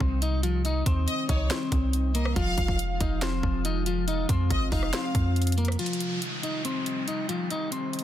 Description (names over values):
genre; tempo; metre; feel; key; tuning
hip hop, trap; 140 BPM; 4/4; half-time; C minor; A4 = 445 Hz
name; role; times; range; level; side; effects
clean electric guitar; melody; 0.0-8.0 s; F3 to Eb5; -30 LUFS; left 2 dB; none
glassy FM pad; sustained chords; 0.0-8.0 s; C3 to F4; -34 LUFS; left 1 dB; ensemble chorus, built-in reverb
warm 808-style bass; bass; 0.0-5.8 s; F1 to F2; -26 LUFS; equal; none
trap drum kit; drums; 0.0-8.0 s; hi-hat, kick drum, rim click, snare drum; -30 LUFS; equal; overdrive
rich studio violin section; second line; 1.1-5.3 s; Db5 to F5; -35 LUFS; equal; tape echo
downlifter; sound effects; 5.8-8.0 s; none; -35 LUFS; right 1 dB; none
room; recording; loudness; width
little or no reverb; dense, heavily limited modern master; -24 LUFS; side -11 dB against mid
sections
0.0-5.8 A section; 5.8-8.0 B section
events
none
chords
0.0 Cm; 2.4 Fm; 5.8 Cm